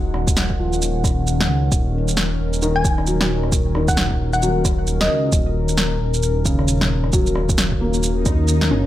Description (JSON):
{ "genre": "future garage", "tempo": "133 BPM", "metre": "4/4", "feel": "swing 60% on 16ths", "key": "Eb minor", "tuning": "A4 = 440 Hz", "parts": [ { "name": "felt-muted upright piano", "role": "accompaniment", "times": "0.0-8.9 s", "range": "Db3 to Db4", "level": "-25 LUFS", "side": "left 1 dB", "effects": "sidechain pumping, low-pass filter, analog delay" }, { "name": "warbly tape-like pad", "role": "sustained chords", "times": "0.0-8.9 s", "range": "Eb3 to Gb5", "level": "-25 LUFS", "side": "left 2 dB", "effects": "chorus, built-in reverb, sidechain pumping" }, { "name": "dark detuned saw bass", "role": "bass", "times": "0.0-8.9 s", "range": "Eb1 to Eb2", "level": "-21 LUFS", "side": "equal", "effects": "none" }, { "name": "electronic rim click, shaker and snare drum", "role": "drums", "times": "0.1-8.7 s", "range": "none", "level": "-23 LUFS", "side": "right 1 dB", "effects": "none" }, { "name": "electronic kick drum", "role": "drums", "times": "0.3-8.4 s", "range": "none", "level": "-20 LUFS", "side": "equal", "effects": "none" }, { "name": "thumb-piano-like synth pluck", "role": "melody", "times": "2.8-5.5 s", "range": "Eb5 to Ab5", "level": "-24 LUFS", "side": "left 1 dB", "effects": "chorus, analog delay" }, { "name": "swell", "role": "sound effects", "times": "8.1-8.9 s", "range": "none", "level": "-28 LUFS", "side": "left 2 dB", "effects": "none" } ], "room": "light reverb", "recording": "none", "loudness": "-16 LUFS", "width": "side -13 dB against mid", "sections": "0.0-8.9 A section", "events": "swell 8.1-8.9", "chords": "0.0 Ebm7" }